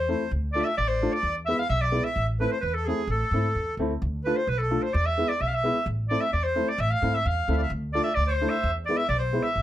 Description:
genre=klezmer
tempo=130 BPM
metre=2/4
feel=straight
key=A harmonic minor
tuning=A4 = 440 Hz
part: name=clear clarinet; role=melody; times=0.0-9.6 s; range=G#4 to F5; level=-27 LUFS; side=equal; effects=none
part: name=accordion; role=second line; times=0.0-9.6 s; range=G#4 to F5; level=-33 LUFS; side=right 2 dB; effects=none
part: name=upright bass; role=bass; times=0.0-9.6 s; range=A1 to G#2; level=-28 LUFS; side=equal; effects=none
part: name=dark upright piano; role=accompaniment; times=0.1-9.5 s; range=G#3 to F4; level=-29 LUFS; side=left 1 dB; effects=none
room=light reverb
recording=none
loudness=-23 LUFS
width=side -13 dB against mid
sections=0.0-4.0 A section; 4.0-9.6 A section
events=none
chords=0.3 Dm; 1.2 E; 2.2 Am; 4.0 Dm; 4.9 E; 5.9 Am; 7.7 Dm; 8.6 E

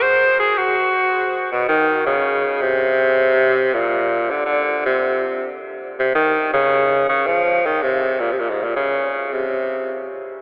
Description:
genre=jazz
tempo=107 BPM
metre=4/4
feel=swing 69% on 8ths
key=unclear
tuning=A4 = 440 Hz
part: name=edgy tenor saxophone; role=solo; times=0.0-10.1 s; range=Ab2 to C5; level=-18 LUFS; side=equal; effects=none
room=wet cathedral reverb, RT60 6.1 s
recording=in a vast, echoing space, telephone sound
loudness=-18 LUFS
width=mono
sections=0.0-1.7 A section; 1.7-10.4 B section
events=tenor saxophone solo 0.0-1.7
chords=none

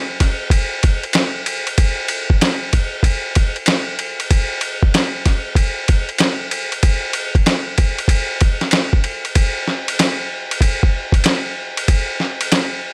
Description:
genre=hip hop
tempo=95 BPM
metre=4/4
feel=swing 65% on 16ths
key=none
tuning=none
part: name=dusty soul sampler-style drum kit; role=drums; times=0.2-12.7 s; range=hi-hat, kick drum, ride cymbal, snare drum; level=-18 LUFS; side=equal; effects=none
room=light reverb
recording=none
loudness=-18 LUFS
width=mono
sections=0.0-9.4 A section; 9.4-12.9 B section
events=none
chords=none

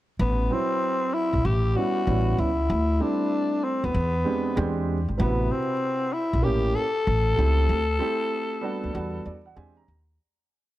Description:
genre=hip hop, jazz-hop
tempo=96 BPM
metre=4/4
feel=swing 65% on 16ths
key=A dorian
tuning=A4 = 442 Hz
part: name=growling tenor saxophone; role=melody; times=0.2-9.6 s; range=B3 to A4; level=-26 LUFS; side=left 2 dB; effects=none
part: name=upright bass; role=bass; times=0.2-10.2 s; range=G#1 to E2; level=-24 LUFS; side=equal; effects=none
part: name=dark upright piano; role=accompaniment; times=0.5-10.2 s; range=C3 to Bb5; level=-29 LUFS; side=right 4 dB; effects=none
room=light reverb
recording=dark, warm production, vinyl crackle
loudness=-22 LUFS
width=side -15 dB against mid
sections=0.2-10.2 head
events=fade-out 7.7-10.2; upright piano fill 8.9-10.2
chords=0.2 Am69; 1.4 A7; 2.7 D9sus4; 3.9 Em7; 4.6 E7alt; 5.2 Am69; 6.4 A7b9; 7.1 A7; 7.7 D9sus4; 8.9 Em9; 9.6 E7alt

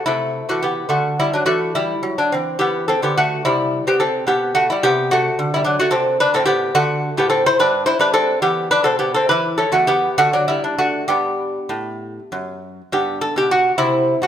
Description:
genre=classical, baroque-style dance for lute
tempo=71 BPM (dotted quarters)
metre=6/8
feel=rubato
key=G major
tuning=A4 = 440 Hz
part: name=lute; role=solo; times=0.0-14.3 s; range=E2 to C5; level=-16 LUFS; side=equal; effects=none
room=moderate recital hall reverb, RT60 1.5 s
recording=none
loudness=-15 LUFS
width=side -9 dB against mid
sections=0.0-12.9 A section; 12.9-14.3 A section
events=none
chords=0.1 Am/C; 0.9 D; 2.6 E5; 3.4 C; 4.3 G/B; 5.9 Am/C; 6.8 D7; 7.6 G5; 8.4 E5; 9.3 A/E; 10.2 D; 11.1 G

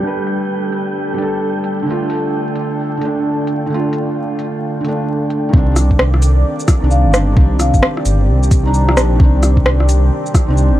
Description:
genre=future garage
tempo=131 BPM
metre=4/4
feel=swing 63% on 16ths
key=C dorian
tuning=A4 = 439 Hz
part: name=felt-muted upright piano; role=accompaniment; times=0.0-10.8 s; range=D3 to B4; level=-19 LUFS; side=right 1 dB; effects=sidechain pumping, digital delay
part: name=deep dark ambient pad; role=sustained chords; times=0.0-10.8 s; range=G3 to F5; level=-23 LUFS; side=right 1 dB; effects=chorus, built-in reverb, sidechain pumping
part: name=wind-like tuned noise texture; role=texture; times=0.0-5.5 s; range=G5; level=-29 LUFS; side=right 1 dB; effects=built-in reverb
part: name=organic electronic drum kit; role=drums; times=0.3-10.7 s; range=hi-hat, rim click, shaker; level=-18 LUFS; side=equal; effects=overdrive, low-pass filter on hats, low-pass filter on snare, low-pass filter on perc
part: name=dark detuned saw bass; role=bass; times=5.5-10.8 s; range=G1 to C2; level=-12 LUFS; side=equal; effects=sidechain pumping
part: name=electronic kick drum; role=drums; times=5.5-10.5 s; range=none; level=-12 LUFS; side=equal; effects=overdrive
part: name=vibraphone with soft mallets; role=melody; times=6.9-9.0 s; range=F5 to Bb5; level=-24 LUFS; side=left 3 dB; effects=ping-pong delay
room=light reverb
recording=vinyl crackle, low-pass filter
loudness=-12 LUFS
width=side -14 dB against mid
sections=0.0-5.5 A section; 5.5-10.8 B section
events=none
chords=0.0 G; 1.9 Dm; 5.5 Cmadd9

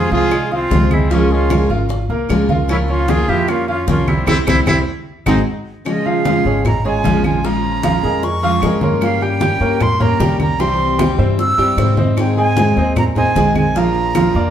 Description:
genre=latin, Cuban son and guajira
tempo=152 BPM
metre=4/4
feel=straight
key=F harmonic minor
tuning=A4 = 440 Hz
part: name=breathy silver concert flute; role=melody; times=0.0-14.5 s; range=Eb4 to E6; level=-20 LUFS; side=right 2 dB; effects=plate reverb
part: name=bright trumpet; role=second line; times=0.0-5.4 s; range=C4 to F4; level=-25 LUFS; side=left 2 dB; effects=none
part: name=picked steel-string acoustic guitar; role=accompaniment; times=0.0-14.5 s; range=C3 to Bb4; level=-20 LUFS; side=left 2 dB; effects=none
part: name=bright baby grand piano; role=arpeggios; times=0.0-14.5 s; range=F3 to Ab5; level=-20 LUFS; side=right 3 dB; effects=none
part: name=upright bass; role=bass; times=0.0-14.5 s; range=Ab1 to Ab2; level=-19 LUFS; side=equal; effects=none
part: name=bongos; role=percussion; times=0.1-14.5 s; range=none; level=-26 LUFS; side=left 2 dB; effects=none
part: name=congas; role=percussion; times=0.1-14.5 s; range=none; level=-21 LUFS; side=equal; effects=none
part: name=claves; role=percussion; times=0.3-14.3 s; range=none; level=-31 LUFS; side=right 2 dB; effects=none
room=wet studio reverb, RT60 0.9 s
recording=heard from further back in the room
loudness=-13 LUFS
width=side -9 dB against mid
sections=0.0-5.9 A section; 5.9-14.5 B section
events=drum fill 4.3-5.9; band accent 4.3-5.9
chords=0.0 Fm; 1.1 Db6; 2.7 Bbm/Db; 4.3 C; 5.1 Ab7; 5.9 Db; 7.4 Bbm7; 9.0 Gdim; 10.6 C; 12.2 Ab; 13.8 Bb

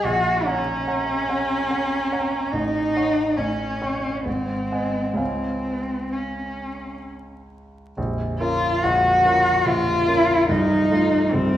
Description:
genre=classical, romantic duo for cello and grand piano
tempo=62-73 BPM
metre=3/4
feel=rubato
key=Db major, Bb minor from 8.0 s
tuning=A4 = 436 Hz
part: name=warm cello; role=melody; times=0.0-11.6 s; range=C4 to Gb4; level=-21 LUFS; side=equal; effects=none
part: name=warm baby grand piano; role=accompaniment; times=0.0-11.6 s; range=Bb0 to Db6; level=-25 LUFS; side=right 1 dB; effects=none
room=wet recital hall reverb, RT60 1.6 s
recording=recorded in a church or concert hall, vinyl crackle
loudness=-19 LUFS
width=side -12 dB against mid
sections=0.0-8.0 A section; 8.0-11.6 B section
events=none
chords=0.1 Gb/Bb; 2.5 Gbm/A; 3.4 A7; 4.3 Ab7; 5.2 Db; 8.0 Bbm; 10.5 F7/C

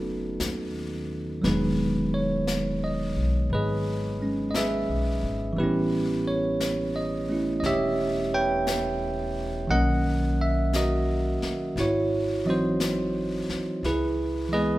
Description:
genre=jazz ballad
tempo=58 BPM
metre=4/4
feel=swing 67% on 8ths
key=unclear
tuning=A4 = 440 Hz
part: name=bell-like tine electric piano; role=accompaniment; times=0.0-14.8 s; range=D#3 to G5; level=-25 LUFS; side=right 1 dB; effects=none
part: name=upright bass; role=bass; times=0.0-14.8 s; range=E1 to D#2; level=-30 LUFS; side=left 1 dB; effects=none
part: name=jazz brush drum kit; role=drums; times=0.4-14.8 s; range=brushed snare drum, hi-hat, snare drum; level=-36 LUFS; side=left 3 dB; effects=none
room=moderate recital hall reverb, RT60 1.8 s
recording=recorded in a church or concert hall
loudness=-24 LUFS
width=side -16 dB against mid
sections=0.0-14.8 A section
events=none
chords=0.0 B7; 1.4 Emaj9; 5.6 A9; 9.7 Bmaj9; 11.8 G#7b13; 13.8 C#m7

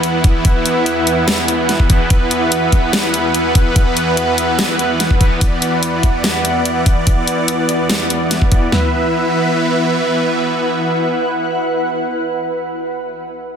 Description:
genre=heavy wobble dubstep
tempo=145 BPM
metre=4/4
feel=half-time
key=unclear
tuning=A4 = 440 Hz
part: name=supersaw chords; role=sustained chords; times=0.0-12.1 s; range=E2 to E5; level=-18 LUFS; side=equal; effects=sidechain pumping
part: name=dubstep drum kit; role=drums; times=0.0-8.6 s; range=hi-hat, snare drum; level=-18 LUFS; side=left 1 dB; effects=small room ambience
part: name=granular cloud pad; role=texture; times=0.0-12.2 s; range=E4 to F#5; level=-18 LUFS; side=equal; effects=built-in reverb, sidechain pumping
part: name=dubstep drum kit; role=drums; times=0.2-8.8 s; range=kick drum, snare drum, toms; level=-13 LUFS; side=equal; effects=small room ambience
room=moderate plate reverb, RT60 1.3 s, digital ambience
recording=dense, heavily limited modern master, faint mains hum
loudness=-13 LUFS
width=side -8 dB against mid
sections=0.0-8.7 A section; 8.7-12.0 B section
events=none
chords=0.0 E5

